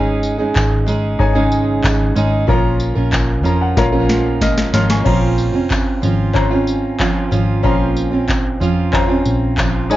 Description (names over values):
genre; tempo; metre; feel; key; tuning
acoustic pop; 93 BPM; 4/4; straight; Bb minor; A4 = 440 Hz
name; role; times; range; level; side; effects
clear upright piano; accompaniment; 0.0-10.0 s; Db4 to Bb6; -22 LUFS; left 3 dB; none
fingerpicked steel-string acoustic guitar; accompaniment; 0.0-10.0 s; Ab2 to Bb4; -18 LUFS; right 3 dB; none
vintage muted fingered electric bass; bass; 0.0-10.0 s; F1 to F2; -19 LUFS; left 1 dB; none
booming analog drum machine; drums; 0.2-10.0 s; crash cymbal, handclaps, kick drum, snare drum, tambourine; -19 LUFS; equal; none
tambourine; percussion; 0.6-9.7 s; none; -35 LUFS; left 5 dB; none
room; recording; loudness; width
light reverb; worn, warbling old tape, cassette tape, warbly pitch drift, nothing above 7.5 kHz; -13 LUFS; side -15 dB against mid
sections
0.0-5.1 A section; 5.1-10.0 B section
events
upright piano fill 3.1-5.1; drum fill 3.8-5.1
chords
0.0 Absus4; 2.5 Bbm; 5.1 Bbmadd9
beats
0.55 1.20 1.84 | 2.48 3.13 3.77 4.42 | 5.06 5.71 6.35 7.00 | 7.64 8.29 8.93 9.58